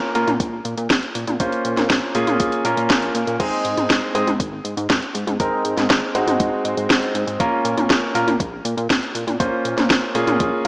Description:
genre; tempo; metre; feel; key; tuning
italo disco; 120 BPM; 4/4; straight; Bb minor; A4 = 440 Hz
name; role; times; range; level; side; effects
clear concert grand piano; stabs; 0.0-10.7 s; Ab3 to C5; -20 LUFS; equal; vintage 12-bit sampler grit
chorused synth bass; bass; 0.1-10.7 s; Ab1 to Bb2; -26 LUFS; equal; tape echo
house drum kit; drums; 0.1-10.7 s; crash cymbal, hi-hat, snare drum, toms; -20 LUFS; equal; overdrive, gated reverb
electronic kick drum; drums; 0.4-10.5 s; none; -24 LUFS; equal; none
room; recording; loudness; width
moderate lush hall reverb, RT60 2.2 s; small speaker sound; -17 LUFS; side -27 dB against mid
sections
0.0-10.7 A section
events
none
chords
0.0 Bbm; 3.4 Ab; 7.4 Bbm

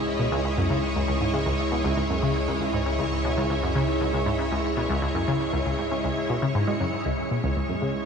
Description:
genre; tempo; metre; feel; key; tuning
ambient, sequencer-driven space music; 118 BPM; 4/4; straight; C# minor; A4 = 435 Hz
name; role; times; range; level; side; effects
string machine, full ensemble; sustained chords; 0.0-8.1 s; G#3 to D#5; -26 LUFS; right 1 dB; ensemble chorus
round analog bass; bass; 0.0-8.1 s; C#2; -32 LUFS; equal; none
analog pluck; riff; 0.2-7.9 s; C#2 to G#3; -26 LUFS; left 1 dB; chorus, ping-pong delay
room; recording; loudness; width
wet shimmer reverb, RT60 9.5 s; cassette tape; -23 LUFS; side -6 dB against mid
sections
0.0-7.1 A section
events
none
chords
0.0 C#madd9

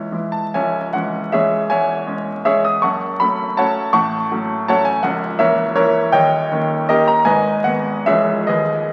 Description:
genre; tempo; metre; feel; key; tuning
classical, romantic triple-time dance for piano with dotted rhythms; 126-176 BPM; 3/4; rubato; C# minor, G# minor from 5.0 s; A4 = 441 Hz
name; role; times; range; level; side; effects
clear baby grand piano; solo; 0.0-8.9 s; C#1 to D#6; -18 LUFS; equal; none
room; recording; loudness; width
wet scoring stage reverb, RT60 1.9 s; very old 78 rpm record, vinyl crackle; -18 LUFS; mono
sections
0.5-8.9 A section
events
none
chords
0.0 C#m; 1.7 C#m/E; 2.8 F#m; 3.9 F#m/A; 5.0 A#dim/C#; 6.1 D#7; 7.3 G#m; 8.1 C#m

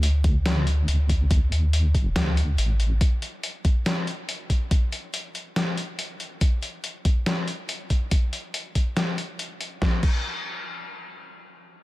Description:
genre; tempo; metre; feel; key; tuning
deep dubstep; 141 BPM; 4/4; swing 54% on 16ths, half-time; unclear; A4 = 436 Hz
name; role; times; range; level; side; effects
deep soft wobble bass; bass; 0.0-3.0 s; A1 to Eb2; -21 LUFS; equal; chorus
trip hop sampler-style drum kit; drums; 0.0-10.2 s; crash cymbal, hi-hat, snare drum; -29 LUFS; left 1 dB; none
electronic kick drum; drums; 0.2-10.2 s; none; -21 LUFS; equal; overdrive
room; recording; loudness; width
little or no reverb; none; -22 LUFS; side -18 dB against mid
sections
0.0-9.8 A section; 9.8-11.8 B section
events
filter sweep on wobble bass 0.0-3.0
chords
none

